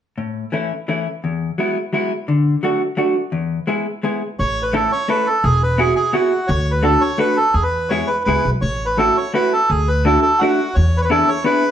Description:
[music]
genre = musette waltz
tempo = 170 BPM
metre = 3/4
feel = straight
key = A major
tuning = A4 = 441 Hz
[part]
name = vintage hollow-body jazz guitar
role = accompaniment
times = 0.2-11.6 s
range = E2 to A4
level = -18 LUFS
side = left 1 dB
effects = none
[part]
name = bandoneon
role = melody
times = 4.4-11.7 s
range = F#4 to C#5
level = -17 LUFS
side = right 2 dB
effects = none
[part]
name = upright bass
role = bass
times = 4.4-11.2 s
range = E1 to E2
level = -19 LUFS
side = equal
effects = none
[sound]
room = wet studio reverb, RT60 0.8 s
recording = band playing live in one room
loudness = -15 LUFS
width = side -10 dB against mid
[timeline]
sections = 0.2-4.4 A section; 4.4-11.7 B section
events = none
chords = 0.2 A; 1.2 Eadd9; 2.3 D; 3.3 E; 4.4 A; 5.4 Eadd9; 6.5 D; 7.5 E; 8.6 A6; 9.7 Dadd9; 10.8 E7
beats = | 0.17 0.53 0.88 | 1.24 1.58 1.93 | 2.28 2.63 2.98 | 3.32 3.67 4.03 | 4.39 4.74 5.09 | 5.44 5.79 6.14 | 6.49 6.84 7.19 | 7.54 7.90 8.26 | 8.62 8.98 9.34 | 9.70 10.05 10.40 | 10.76 11.11 11.46

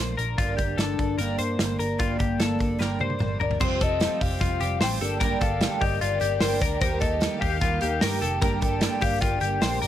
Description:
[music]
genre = jangly indie pop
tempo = 149 BPM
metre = 4/4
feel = straight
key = unclear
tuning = A4 = 440 Hz
[part]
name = picked twelve-string acoustic guitar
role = accompaniment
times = 0.0-9.9 s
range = G2 to G4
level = -32 LUFS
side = right 6 dB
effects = none
[part]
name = twelve-string electric guitar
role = arpeggios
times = 0.0-9.9 s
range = F4 to C5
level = -30 LUFS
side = left 6 dB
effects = none
[part]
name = vintage muted picked electric bass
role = bass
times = 0.0-9.9 s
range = F1 to G2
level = -29 LUFS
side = equal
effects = none
[part]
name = loose indie drum kit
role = drums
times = 0.2-9.9 s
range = crash cymbal, hi-hat, kick drum, snare drum, toms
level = -27 LUFS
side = equal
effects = none
[part]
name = hollow clarinet-like synth lead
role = melody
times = 0.8-9.8 s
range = Bb3 to G5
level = -29 LUFS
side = left 3 dB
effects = chorus, phaser
[part]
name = warbly lo-fi synth keys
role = accompaniment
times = 3.6-9.9 s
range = Bb3 to C5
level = -36 LUFS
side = right 1 dB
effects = chorus
[part]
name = warm studio string section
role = sustained chords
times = 3.6-9.9 s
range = D3 to G4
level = -37 LUFS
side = right 1 dB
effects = none
[sound]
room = light reverb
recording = none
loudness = -22 LUFS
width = side -11 dB against mid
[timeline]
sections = 0.0-3.6 A section; 3.6-9.9 B section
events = drum fill 2.8-3.6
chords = 0.4 Gm; 3.6 Fsus2; 5.0 Gm; 6.8 Eb; 8.4 Gm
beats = | 0.39 0.79 1.19 1.59 | 2.00 2.40 2.80 3.21 | 3.61 4.01 4.41 4.81 | 5.21 5.61 6.01 6.42 | 6.82 7.22 7.62 8.02 | 8.42 8.82 9.22 9.63

